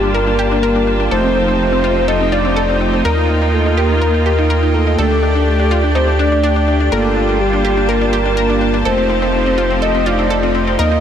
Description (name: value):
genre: house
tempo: 124 BPM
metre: 4/4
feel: straight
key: unclear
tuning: A4 = 440 Hz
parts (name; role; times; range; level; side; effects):
- soft octave-layered synth lead; melody; 0.0-11.0 s; G4 to Eb5; -18 LUFS; equal; chorus, ping-pong delay
- rich studio string section; sustained chords; 0.0-11.0 s; F3 to A5; -22 LUFS; right 1 dB; none
- analog pluck; arpeggios; 0.0-11.0 s; C4 to Bb4; -21 LUFS; left 1 dB; chorus, ping-pong delay
- soft supersaw; stabs; 0.0-11.0 s; A3 to Eb5; -19 LUFS; equal; ping-pong delay
- round analog bass; bass; 0.0-11.0 s; F1 to Eb2; -18 LUFS; equal; none
- drifting glass-harmonics texture; texture; 0.0-11.0 s; G5; -29 LUFS; right 1 dB; chorus, built-in reverb
room: light reverb, digital ambience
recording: none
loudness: -12 LUFS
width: side -9 dB against mid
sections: 0.0-11.0 A section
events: none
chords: 0.0 Gm7; 1.1 F7; 3.0 Ebsus2; 5.0 Dsus4; 6.9 Gm7; 8.9 F7